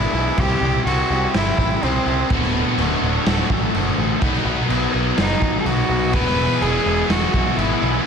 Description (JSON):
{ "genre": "quiet-loud alternative rock", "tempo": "125 BPM", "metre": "4/4", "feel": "straight", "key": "unclear", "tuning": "A4 = 440 Hz", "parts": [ { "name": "rich cello", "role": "melody", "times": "0.0-8.0 s", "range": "A3 to B4", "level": "-23 LUFS", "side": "equal", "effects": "slapback echo, digital delay" }, { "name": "crunchy overdriven guitar", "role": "riff", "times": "0.0-8.1 s", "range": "D2 to C5", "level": "-25 LUFS", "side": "left 11 dB", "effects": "slapback echo" }, { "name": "tight distorted guitar", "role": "riff", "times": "0.0-8.1 s", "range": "D2 to C5", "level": "-26 LUFS", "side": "right 11 dB", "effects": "distortion, slapback echo" }, { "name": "overdriven picked electric bass", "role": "bass", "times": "0.0-8.0 s", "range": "D1 to C2", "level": "-23 LUFS", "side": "right 1 dB", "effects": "none" }, { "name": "raw garage drum kit", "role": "drums", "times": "0.4-7.7 s", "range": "crash cymbal, kick drum, snare drum", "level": "-22 LUFS", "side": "equal", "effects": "none" }, { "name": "distorted electric guitar", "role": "riff", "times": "2.3-8.1 s", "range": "D2 to B4", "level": "-24 LUFS", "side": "equal", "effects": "distortion" } ], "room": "light reverb, small room ambience", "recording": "none", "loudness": "-16 LUFS", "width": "side -6 dB against mid", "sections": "0.0-8.1 A section", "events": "cello solo 0.0-8.1", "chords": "0.4 C; 2.3 D; 4.2 B; 6.1 E" }